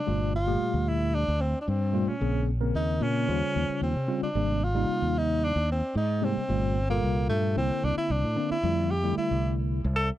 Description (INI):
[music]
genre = electric jazz fusion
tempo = 112 BPM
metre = 4/4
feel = straight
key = unclear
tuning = A4 = 445 Hz
[part]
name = clear tenor saxophone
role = melody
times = 0.0-10.1 s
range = A3 to A4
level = -29 LUFS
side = equal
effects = none
[part]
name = tine electric piano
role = accompaniment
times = 0.1-9.8 s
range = Bb2 to C5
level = -31 LUFS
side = equal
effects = overdrive, medium stereo tremolo
[part]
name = fretless electric bass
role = bass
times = 0.1-10.1 s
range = G1 to C3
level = -27 LUFS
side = equal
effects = wide subtle chorus
[sound]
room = little or no reverb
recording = dry, close 1970s-style studio recording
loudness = -24 LUFS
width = side -13 dB against mid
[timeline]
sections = 0.0-10.2 A section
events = none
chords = 0.1 Gm9; 2.2 Bbm9; 3.3 Eb13; 4.4 Abmaj9#11; 6.5 Gm9; 7.6 C9; 8.6 Fmaj13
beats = | 0.07 0.60 1.14 1.68 | 2.21 2.75 3.28 3.82 | 4.35 4.89 5.42 5.96 | 6.49 7.03 7.57 8.10 | 8.64 9.17 9.71